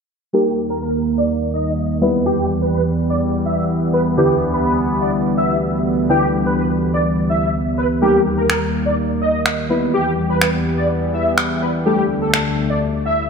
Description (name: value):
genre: dance-pop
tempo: 125 BPM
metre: 4/4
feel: straight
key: G major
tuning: A4 = 440 Hz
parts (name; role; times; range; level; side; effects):
- wide unison lead; melody; 0.3-13.2 s; G4 to E5; -20 LUFS; equal; ensemble chorus, low-pass filter, ping-pong delay
- deep mellow chord stab; accompaniment; 0.3-13.3 s; D3 to B4; -21 LUFS; left 1 dB; chorus, low-pass filter
- sweeping resonant pad; sustained chords; 0.3-13.3 s; D2 to B3; -19 LUFS; equal; chorus, low-pass filter
- electronic finger snaps; drums; 8.5-12.4 s; none; -20 LUFS; equal; overdrive
room: wet lush hall reverb, RT60 2.0 s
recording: dreamy mix soaked in reverb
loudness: -15 LUFS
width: side -5 dB against mid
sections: 0.3-13.3 A section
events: filter sweep 0.3-13.3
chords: 0.3 Eb; 2.0 Em; 4.2 G6/D; 8.0 Eb; 9.7 Em; 11.9 Dsus4